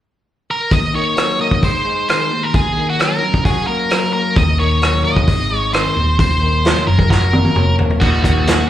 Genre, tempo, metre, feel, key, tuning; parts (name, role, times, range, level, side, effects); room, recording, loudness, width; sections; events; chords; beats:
indie rock; 132 BPM; 4/4; straight; Eb dorian; A4 = 439 Hz
octave-fuzz lead guitar; melody; 0.5-8.7 s; Gb4 to Eb5; -18 LUFS; right 1 dB; distortion, slapback echo, digital delay
electric guitar through a small old amp; riff; 0.7-8.7 s; Eb2 to Gb4; -20 LUFS; left 2 dB; slapback echo
vintage drum kit; drums; 0.7-8.6 s; crash cymbal, hi-hat, kick drum, rim click, snare drum, toms; -17 LUFS; equal
hollow-body short-scale picked electric bass; bass; 4.4-8.6 s; Eb1 to Ab1; -17 LUFS; equal
little or no reverb; live gig heard through the venue's PA, club reverb; -13 LUFS; side -12 dB against mid
0.7-8.0 A section
drum fill 7.1-8.0
0.0 N.C.; 0.7 Ebm; 1.6 Ab; 2.3 Ebm; 3.2 Gb; 4.4 Ebm; 5.3 Ab5; 6.0 Ebm; 6.9 Gb; 8.0 Ebm
0.25 | 0.71 1.17 1.62 2.08 | 2.54 3.00 3.45 3.91 | 4.37 4.82 5.28 5.73 | 6.19 6.65 7.10 7.56 | 8.01 8.47